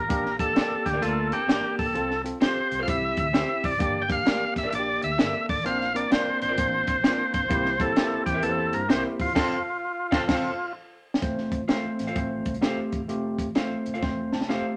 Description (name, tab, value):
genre	uptempo 1960s-style soul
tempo	129 BPM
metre	4/4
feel	swing 64% on 8ths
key	F major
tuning	A4 = 442 Hz
part	overdriven tonewheel organ	melody	0.0-10.7 s	F4 to G5	-28 LUFS	equal	none
part	tine electric piano	accompaniment	0.0-14.8 s	A3 to A5	-32 LUFS	equal	none
part	vintage muted fingered electric bass	bass	0.0-14.6 s	Eb1 to G2	-40 LUFS	equal	none
part	compact cocktail drum kit	drums	0.1-14.6 s	crash cymbal, hi-hat, kick drum, snare drum	-29 LUFS	equal	none
part	electric guitar through a small old amp	stabs	0.6-14.7 s	C4 to F5	-37 LUFS	equal	spring reverb
part	clean electric guitar	riff	1.0-1.9, 9.4-10.5 s	A3 to A4	-34 LUFS	equal	none
room	moderate studio ambience, RT60 0.5 s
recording	none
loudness	-26 LUFS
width	mono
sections	0.0-11.2 A section; 11.2-14.8 B section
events	band accent 9.4-11.2; drum fill 10.3-11.2, 14.0-14.8; tine electric piano fill 14.0-14.8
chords	0.1 Gm/Bb; 2.0 F/C; 2.9 C; 3.8 Gm; 5.7 Bbadd9; 7.5 C7; 9.4 F